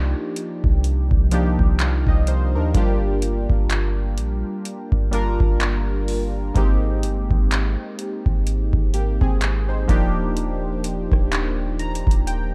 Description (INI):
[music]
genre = contemporary R&B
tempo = 63 BPM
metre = 4/4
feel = swing 58% on 16ths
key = C minor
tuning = A4 = 440 Hz
[part]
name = warm analog keys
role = accompaniment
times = 0.0-12.5 s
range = F3 to Bb5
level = -28 LUFS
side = equal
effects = chorus, phaser
[part]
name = clean 808-style bass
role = bass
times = 0.0-12.5 s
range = Eb1 to Eb2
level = -24 LUFS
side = equal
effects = none
[part]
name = booming analog drum machine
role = drums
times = 0.4-12.5 s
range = handclaps, hi-hat, kick drum, rim click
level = -23 LUFS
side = equal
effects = none
[sound]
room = digital ambience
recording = dark, warm production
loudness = -21 LUFS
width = mono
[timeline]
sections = 0.0-12.5 A section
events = synth keys fill 11.3-12.5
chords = 0.0 Cm11; 2.7 Gm7; 6.6 Abmaj7; 9.9 Ebmaj7